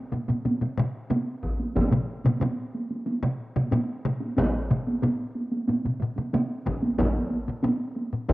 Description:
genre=japanese traditional, taiko drum ensemble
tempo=92 BPM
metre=4/4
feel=straight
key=none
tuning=none
part: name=taiko ensemble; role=percussion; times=0.1-8.3 s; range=none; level=-28 LUFS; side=right 1 dB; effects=none
part: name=taiko ensemble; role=percussion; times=0.1-8.3 s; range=none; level=-29 LUFS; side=left 2 dB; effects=none
part: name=taiko ensemble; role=percussion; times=0.1-6.8 s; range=none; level=-29 LUFS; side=right 2 dB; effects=none
part: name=taiko ensemble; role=percussion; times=1.4-8.3 s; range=none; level=-27 LUFS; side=equal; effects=none
room=light reverb, studio ambience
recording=home recording on cassette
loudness=-24 LUFS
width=side -18 dB against mid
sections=0.0-7.0 A section; 7.0-8.3 B section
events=none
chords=none

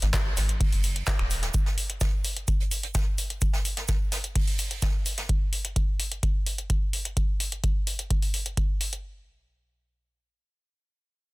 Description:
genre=acid house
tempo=128 BPM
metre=4/4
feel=straight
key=unclear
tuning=A4 = 444 Hz
part: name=round analog bass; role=bass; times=0.0-1.5 s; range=D#1 to G#1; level=-28 LUFS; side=equal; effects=sidechain pumping
part: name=booming analog drum machine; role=drums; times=0.0-9.0 s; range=finger snaps, handclaps, hi-hat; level=-31 LUFS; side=left 1 dB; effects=none
part: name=jazz brush drum kit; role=drums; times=0.0-5.3 s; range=hi-hat, shaker, snare drum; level=-36 LUFS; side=right 2 dB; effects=high-pass filter on hats, soft clipping on snare, high-pass filter on snare, high-pass filter on perc, high-pass filter on room
part: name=electronic kick drum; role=drums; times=0.1-8.7 s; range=none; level=-26 LUFS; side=equal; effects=none
room=little or no reverb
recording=dense, heavily limited modern master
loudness=-24 LUFS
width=side -22 dB against mid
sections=0.0-9.0 A section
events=filter sweep on analog synth bass 0.0-1.5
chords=none

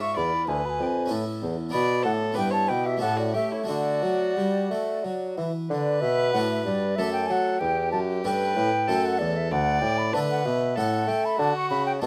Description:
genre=classical, baroque-style sonata movement with continuo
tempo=95 BPM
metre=3/4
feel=rubato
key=D major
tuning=A4 = 440 Hz
part: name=wooden flute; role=melody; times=0.0-12.1 s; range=C#5 to C#6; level=-29 LUFS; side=equal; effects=none
part: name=warm violin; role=second line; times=0.0-12.1 s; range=E4 to E5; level=-33 LUFS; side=equal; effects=none
part: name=harpsichord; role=accompaniment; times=0.0-12.1 s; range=D2 to B4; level=-32 LUFS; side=equal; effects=none
part: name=warm bassoon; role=bass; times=0.2-12.1 s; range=D2 to A3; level=-30 LUFS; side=equal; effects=none
room=light reverb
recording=close, detailed microphones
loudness=-25 LUFS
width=mono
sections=0.0-5.7 A section; 5.7-12.1 B section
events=none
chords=0.0 G#dim7; 1.1 A; 1.7 Bm; 2.4 Em7/G; 3.0 A7; 3.7 D; 7.0 D/F#; 7.6 A7/E; 9.5 D5; 10.8 A; 11.4 D

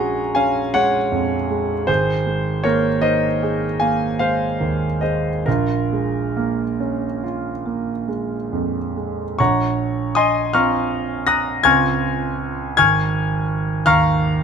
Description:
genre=classical, impressionist solo piano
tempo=44-56 BPM (dotted quarters)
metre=9/8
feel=rubato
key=Bb minor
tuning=A4 = 439 Hz
part: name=clear concert grand piano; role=solo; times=0.0-14.4 s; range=Ab1 to Bb6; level=-17 LUFS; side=equal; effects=none
room=little or no reverb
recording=close, detailed microphones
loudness=-17 LUFS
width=side -6 dB against mid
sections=0.0-9.4 A section; 9.4-14.4 A section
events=none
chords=0.0 Gbmaj9/Bb; 1.9 Abadd9; 5.5 Bbm7; 9.4 Bbmadd9; 11.7 Dbmaj7; 12.8 Absus2

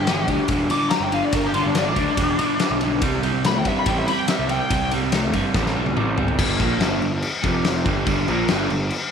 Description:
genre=blues rock power trio and southern rock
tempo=142 BPM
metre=4/4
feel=straight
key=unclear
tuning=A4 = 437 Hz
part: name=lead guitar through a small cranked amp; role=melody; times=0.0-4.9 s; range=D4 to D6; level=-24 LUFS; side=left 2 dB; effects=wah, overdrive, slapback echo
part: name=crunchy overdriven guitar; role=riff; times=0.0-8.9 s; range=F2 to Bb3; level=-23 LUFS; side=right 1 dB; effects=none
part: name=fuzz picked electric bass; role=bass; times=0.0-8.9 s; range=E1 to G2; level=-25 LUFS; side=right 1 dB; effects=overdrive
part: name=big rock drum kit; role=drums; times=0.1-9.0 s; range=crash cymbal, kick drum, ride cymbal, snare drum, toms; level=-24 LUFS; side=left 3 dB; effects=none
room=light reverb, small room reverb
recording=1960s-style stereo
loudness=-18 LUFS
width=side -7 dB against mid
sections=0.0-6.4 A section; 6.4-9.1 B section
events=lead electric guitar solo 0.0-6.4; drum fill 5.6-6.4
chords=0.0 G5; 3.0 C5; 6.4 G5; 7.4 F5; 7.9 G5

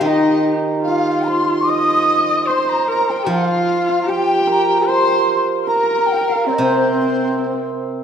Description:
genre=chinese traditional, Chinese chamber ensemble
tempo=74 BPM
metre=2/4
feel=rubato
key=C yu mode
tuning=A4 = 440 Hz
part: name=large dizi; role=melody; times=0.0-7.7 s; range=C5 to Eb6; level=-21 LUFS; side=equal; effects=none
part: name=bright horsehead fiddle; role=second line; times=0.0-7.7 s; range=C4 to Eb5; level=-21 LUFS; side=left 2 dB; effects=none
part: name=hammered dulcimer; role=second line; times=0.0-8.0 s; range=C4 to Eb5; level=-20 LUFS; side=right 4 dB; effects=none
part: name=mellow large dizi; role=second line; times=0.0-7.7 s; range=C5 to Eb6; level=-22 LUFS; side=left 4 dB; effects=none
part: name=steel-string zither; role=accompaniment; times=0.0-8.0 s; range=C3 to F3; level=-24 LUFS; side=equal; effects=none
room=wet scoring stage reverb, RT60 2.0 s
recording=dark, warm production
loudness=-14 LUFS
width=side -8 dB against mid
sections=0.0-8.0 A section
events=none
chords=none

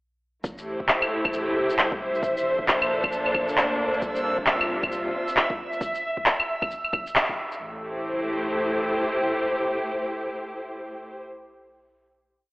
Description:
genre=future garage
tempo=134 BPM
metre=4/4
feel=swing 62% on 16ths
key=A phrygian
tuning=A4 = 440 Hz
part: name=warm symphonic string section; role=sustained chords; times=0.4-11.3 s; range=A2 to C5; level=-25 LUFS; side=equal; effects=vintage 12-bit sampler grit, sidechain pumping
part: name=warm sub bass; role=bass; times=0.4-8.9 s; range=E1 to D2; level=-44 LUFS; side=equal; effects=tube saturation, sidechain pumping
part: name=electronic kick drum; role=drums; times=0.4-7.4 s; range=none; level=-35 LUFS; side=equal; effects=overdrive, studio reverb
part: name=electronic shaker, handclaps and claves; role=drums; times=0.4-7.6 s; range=none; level=-23 LUFS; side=equal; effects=studio reverb
part: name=backwards swelling texture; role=texture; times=2.0-5.8 s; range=E5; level=-32 LUFS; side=right 1 dB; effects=built-in reverb
room=moderate lush hall reverb, RT60 2.3 s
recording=telephone sound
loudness=-22 LUFS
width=side -23 dB against mid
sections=0.4-7.6 groove; 7.6-11.2 final chord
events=band accent 7.2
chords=0.4 Am7; 2.2 Bbmaj7; 4.0 C9sus4; 5.8 N.C.; 7.6 Am7

